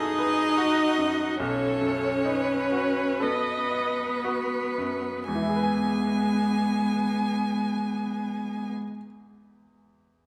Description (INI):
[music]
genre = classical, slow romantic movement for piano quartet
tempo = 27-39 BPM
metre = 4/4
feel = rubato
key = E major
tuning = A4 = 440 Hz
[part]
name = rich violin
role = melody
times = 0.0-8.7 s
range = B4 to G#5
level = -34 LUFS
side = equal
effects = none
[part]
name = rich cello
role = second line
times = 0.0-8.7 s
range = G#3 to D#4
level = -29 LUFS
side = equal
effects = none
[part]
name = bright baby grand piano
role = accompaniment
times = 0.0-10.3 s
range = B1 to G#5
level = -35 LUFS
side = equal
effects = none
[part]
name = rich viola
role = accompaniment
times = 0.0-8.7 s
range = B3 to D#5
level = -34 LUFS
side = equal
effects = none
[sound]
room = wet recital hall reverb, RT60 1.9 s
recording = none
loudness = -26 LUFS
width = mono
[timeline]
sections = 0.0-5.3 A section; 5.3-10.3 B section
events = slowing down 0.0-5.3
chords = 0.0 B7(no3); 1.4 B7; 5.3 E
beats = 1.40 3.22 | 5.29 7.22 9.14